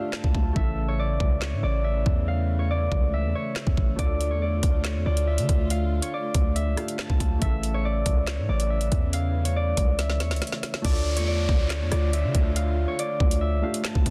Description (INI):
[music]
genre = hip hop, drill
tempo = 140 BPM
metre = 4/4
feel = half-time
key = D harmonic minor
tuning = A4 = 439 Hz
[part]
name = Celtic harp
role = melody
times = 0.0-14.1 s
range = C#5 to A5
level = -33 LUFS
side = equal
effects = low-pass filter
[part]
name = felt-muted upright piano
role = accompaniment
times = 0.0-14.1 s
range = C#3 to A4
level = -39 LUFS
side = equal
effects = low-pass filter
[part]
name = warm chamber string section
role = sustained chords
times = 0.0-14.1 s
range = C#3 to F4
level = -37 LUFS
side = equal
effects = none
[part]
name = drill drum kit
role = drums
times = 0.1-14.1 s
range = crash cymbal, handclaps, hi-hat, kick drum, rim click, snare drum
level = -28 LUFS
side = equal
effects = none
[part]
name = hard-hitting 808-style bass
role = bass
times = 0.2-14.1 s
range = A1 to D3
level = -28 LUFS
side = equal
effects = none
[part]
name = downlifter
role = sound effects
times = 10.8-14.1 s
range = none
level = -40 LUFS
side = equal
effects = none
[sound]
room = little or no reverb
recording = dense, heavily limited modern master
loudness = -25 LUFS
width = mono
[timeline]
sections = 0.0-10.8 A section; 10.8-14.1 B section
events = break 0.0-4.0; drum fill 10.0-10.8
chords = 0.0 Dm; 0.6 A; 4.0 Dm; 7.4 A; 10.8 Dm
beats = 0.13 | 0.56 0.99 1.42 1.85 | 2.27 2.70 3.13 3.56 | 3.99 4.42 4.85 5.28 | 5.70 6.13 6.56 6.99 | 7.42 7.85 8.28 8.70 | 9.13 9.56 9.99 10.42 | 10.85 11.28 11.70 12.13 | 12.56 12.99 13.42 13.85